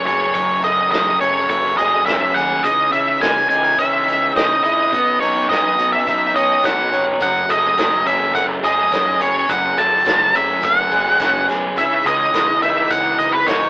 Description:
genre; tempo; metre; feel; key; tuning
indie rock; 105 BPM; 4/4; straight; unclear; A4 = 440 Hz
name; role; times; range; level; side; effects
octave-fuzz lead guitar; melody; 0.0-13.7 s; B4 to A5; -15 LUFS; equal; distortion
raw garage guitar; riff; 0.0-13.7 s; F#2 to C#5; -21 LUFS; equal; overdrive
twelve-string electric guitar; riff; 0.0-13.7 s; F#2 to G#4; -29 LUFS; equal; none
fuzz fingered electric bass; bass; 0.0-13.7 s; E#1 to D#2; -27 LUFS; equal; overdrive
unplugged drum kit; drums; 0.1-13.6 s; hi-hat, kick drum, snare drum; -24 LUFS; equal; none
tube shaker; percussion; 7.2-13.6 s; none; -43 LUFS; left 1 dB; none
room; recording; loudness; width
moderate booth ambience, RT60 0.2 s; rough rehearsal-room recording, AM radio sound; -14 LUFS; side -25 dB against mid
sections
0.0-13.7 A section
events
none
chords
0.0 F#madd9; 2.6 C#madd9; 4.9 Badd9; 7.2 F#madd9; 11.8 C#madd9

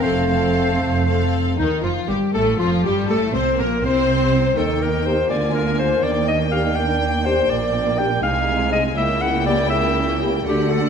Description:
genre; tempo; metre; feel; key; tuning
classical; 81 BPM (dotted quarters); 6/8; rubato; unclear; A4 = 442 Hz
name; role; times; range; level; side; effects
clear studio violin section; melody; 0.0-10.9 s; Eb4 to Ab5; -29 LUFS; left 4 dB; none
bright clarinet; second line; 0.0-10.9 s; C4 to G5; -22 LUFS; left 1 dB; none
clear oboe; second line; 0.0-1.3 s; C5; -28 LUFS; right 1 dB; none
mellow hollow silver concert flute; second line; 0.0-1.3 s; F5; -28 LUFS; right 2 dB; none
warm symphonic violin section; second line; 0.0-10.9 s; D4 to C5; -28 LUFS; left 4 dB; none
rich symphonic viola section; accompaniment; 0.0-10.9 s; Eb3 to C4; -25 LUFS; right 1 dB; none
warm bassoon; accompaniment; 0.0-1.3 s; A3; -30 LUFS; right 3 dB; none
dark French horn section; sustained chords; 0.0-10.9 s; Eb3 to A4; -26 LUFS; left 4 dB; none
dark symphonic cello section; bass; 0.0-10.9 s; Eb2 to Eb3; -26 LUFS; right 4 dB; none
rich symphonic double bass section; bass; 0.0-10.9 s; F1 to Eb2; -24 LUFS; right 3 dB; none
room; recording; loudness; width
moderate scoring stage reverb, RT60 1.7 s; none; -17 LUFS; side -7 dB against mid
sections
0.0-1.6 A section; 1.6-10.9 A section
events
none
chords
0.0 F; 1.6 Ebadd9; 2.3 F; 3.1 Am; 4.6 Eb; 5.3 Bb7/D; 6.0 Ebmaj7; 7.5 Gm/Bb; 8.2 Ab/C; 9.0 C#dim7

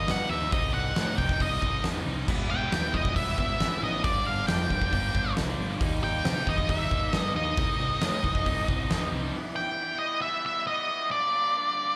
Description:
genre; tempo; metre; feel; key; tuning
quiet-loud alternative rock; 136 BPM; 4/4; straight; E harmonic minor; A4 = 440 Hz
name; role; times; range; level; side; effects
octave-fuzz lead guitar; melody; 0.0-12.0 s; D5 to G5; -31 LUFS; equal; distortion, slapback echo, analog delay
raw garage guitar; riff; 0.0-12.0 s; G2 to E4; -40 LUFS; equal; overdrive, slapback echo
scooped high-gain guitar; riff; 0.0-9.3 s; G2 to E4; -39 LUFS; equal; distortion, slapback echo
growling picked electric bass; bass; 0.0-9.3 s; E1 to C3; -34 LUFS; equal; overdrive
oversized low-tuned drum kit; drums; 0.1-9.0 s; crash cymbal, hi-hat, kick drum, snare drum; -32 LUFS; equal; none
room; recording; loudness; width
light reverb, small room reverb; live gig heard through the venue's PA, club reverb; -27 LUFS; mono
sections
0.0-9.3 A section; 9.3-12.0 A section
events
none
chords
0.0 D#; 0.5 Cm; 2.3 Em; 4.0 Gm; 5.8 D#; 7.6 Cm; 9.3 Em; 11.1 Gm

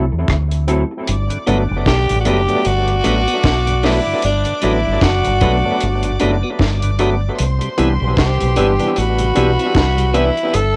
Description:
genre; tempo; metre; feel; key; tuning
lovers rock reggae; 76 BPM; 4/4; swing 58% on 16ths; G major; A4 = 439 Hz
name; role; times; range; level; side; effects
barky tine electric piano; accompaniment; 0.0-10.3 s; E3 to E4; -25 LUFS; equal; overdrive, cassette tape, analog delay
electric guitar through a small old amp; stabs; 0.0-10.3 s; C4 to B4; -27 LUFS; equal; analog chorus, cassette tape, analog delay
deep dub fingered electric bass; bass; 0.0-10.7 s; F#1 to E2; -20 LUFS; equal; none
deep reggae drum kit; drums; 0.3-10.7 s; hi-hat, kick drum, rim click, snare drum; -22 LUFS; equal; cassette tape
warm studio violin section; second line; 1.1-10.8 s; A4 to D6; -30 LUFS; equal; cassette tape
tonewheel organ; accompaniment; 1.3-10.3 s; G2 to F#4; -28 LUFS; equal; overdrive, stopped rotary speaker, cassette tape, analog delay
raspy tenor saxophone; melody; 1.9-10.8 s; D4 to A4; -21 LUFS; equal; cassette tape, analog delay
room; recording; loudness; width
light reverb; home recording on cassette; -16 LUFS; mono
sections
0.0-1.1 A section; 1.1-10.8 B section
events
none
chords
0.0 D7; 1.1 Gmaj7; 7.4 Cmaj7

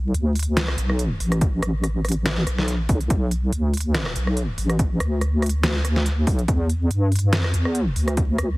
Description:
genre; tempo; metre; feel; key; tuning
deep dubstep; 142 BPM; 4/4; swing 55% on 16ths, half-time; B minor; A4 = 440 Hz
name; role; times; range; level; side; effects
deep soft wobble bass; bass; 0.0-8.6 s; A1 to G2; -21 LUFS; equal; chorus
dubstep drum kit; drums; 0.1-8.5 s; hi-hat, rim click, snare drum; -26 LUFS; equal; none
electronic kick drum; drums; 1.4-8.3 s; none; -21 LUFS; equal; none
room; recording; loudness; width
little or no reverb; heavily compressed radio sound, vinyl crackle; -19 LUFS; side -22 dB against mid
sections
0.0-8.6 A section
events
none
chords
none

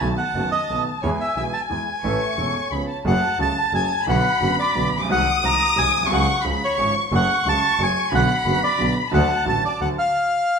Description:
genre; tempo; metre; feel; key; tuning
tango; 178 BPM; 3/4; rubato; A major, F# harmonic minor from 3.1 s; A4 = 440 Hz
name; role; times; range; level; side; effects
bandoneon; melody; 0.0-10.6 s; C#5 to A#5; -22 LUFS; equal; none
warm studio violin section; second line; 0.0-10.1 s; G#5 to D#6; -23 LUFS; left 2 dB; none
warm concert grand piano; accompaniment; 0.0-9.9 s; E1 to A4; -25 LUFS; right 3 dB; none
clear double bass; bass; 0.0-9.9 s; E1 to E2; -26 LUFS; equal; none
vibraphone with medium mallets; second line; 2.0-3.0 s; B4 to E5; -30 LUFS; equal; none
room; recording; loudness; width
wet large studio reverb, RT60 1.3 s; minimal, uncompressed stereo recording; -18 LUFS; side -6 dB against mid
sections
0.0-3.1 A section; 3.1-10.6 B section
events
none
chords
0.0 B7; 1.0 E; 2.0 A; 2.7 C#7; 3.1 F#madd9; 4.1 Bm; 5.1 G#7/B#; 6.1 C#sus4; 6.4 C#; 7.1 F#madd9; 8.1 Bm; 9.1 D

